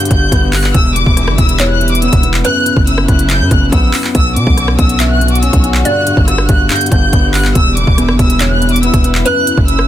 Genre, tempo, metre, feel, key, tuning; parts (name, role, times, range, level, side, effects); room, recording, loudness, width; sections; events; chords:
hip hop, trap; 141 BPM; 4/4; half-time; A4 = 438 Hz
warm chamber violin section; melody; 0.0-9.9 s; D6 to G6; -16 LUFS; equal; tape echo
hollow square pluck; second line; 0.0-9.9 s; B4 to E5; -20 LUFS; right 1 dB; chorus, tape echo
dark concert grand piano; accompaniment; 0.0-9.9 s; E2 to C#4; -17 LUFS; left 4 dB
muted studio string section; sustained chords; 0.0-9.9 s; C#3 to F#4; -20 LUFS; right 1 dB
trap drum kit; drums; 0.0-9.9 s; handclaps, hi-hat, kick drum, rim click; -13 LUFS; equal
hard-hitting 808-style bass; bass; 0.1-9.9 s; E1 to B2; -14 LUFS; equal
little or no reverb; dense, heavily limited modern master, faint mains hum; -9 LUFS; side -12 dB against mid
0.0-9.9 A section
0.0 Gmaj7; 0.7 Em7; 2.4 F#7sus4; 4.1 Bmadd9; 5.9 Gmaj7; 7.6 Em7; 9.3 F#7sus4